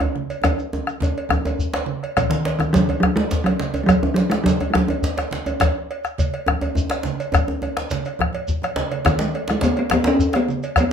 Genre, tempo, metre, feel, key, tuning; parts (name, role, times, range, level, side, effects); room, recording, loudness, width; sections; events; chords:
west african traditional, West African drum ensemble; 139 BPM (dotted quarters); 12/8; straight; B major pentatonic; A4 = 436 Hz
bombo; percussion; 0.0-10.9 s; -22 LUFS; left 3 dB
cowbell; percussion; 0.0-10.9 s; -28 LUFS; right 4 dB
djembe; percussion; 0.0-10.9 s; -27 LUFS; left 4 dB
djembe; percussion; 0.0-10.5 s; -25 LUFS; right 1 dB
congas; percussion; 0.2-10.9 s; -30 LUFS; right 6 dB
shekere; percussion; 0.3-10.9 s; -32 LUFS; right 1 dB
talking drum; melody; 2.2-5.3, 9.1-10.9 s; B2 to C#4; -19 LUFS; equal
moderate studio reverb, RT60 0.6 s; minimal, uncompressed stereo recording; -18 LUFS; side -8 dB against mid
0.0-2.2 A section; 2.2-10.9 B section
drum fill 0.4-2.2, 8.3-9.1